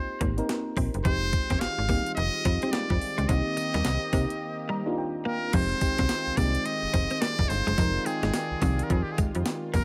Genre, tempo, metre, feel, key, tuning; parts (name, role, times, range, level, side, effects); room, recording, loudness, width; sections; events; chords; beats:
R&B, new jack swing; 107 BPM; 4/4; swing 61% on 16ths; F dorian; A4 = 443 Hz
trumpet with metal mute; melody; 0.0-9.8 s; G4 to F5; -33 LUFS; equal
mellow FM electric piano; accompaniment; 0.0-9.8 s; G3 to Bb5; -36 LUFS; equal; chorus
clean electric guitar; riff; 0.2-9.8 s; F3 to C4; -36 LUFS; equal; subtle chorus
slap-like FM bass; bass; 0.2-9.8 s; F1 to C3; -31 LUFS; equal
clean 12-bit digital drum machine; drums; 0.2-9.8 s; crash cymbal, hi-hat, kick drum, snare drum, tambourine; -31 LUFS; equal; overdrive
brassy analog pad; sustained chords; 1.0-9.8 s; Eb3 to D5; -39 LUFS; equal; chorus
little or no reverb; -27 LUFS; mono
0.0-5.5 A section; 5.5-9.8 B section
break 4.4-5.5; FM electric piano fill 4.4-5.5
0.0 Abmaj7; 1.0 Fm7; 3.3 Cm7; 5.5 Fm7
0.49 | 1.05 1.61 2.17 2.73 | 3.29 3.85 4.41 4.97 | 5.53 6.09 6.66 7.22 | 7.78 8.34 8.90 9.46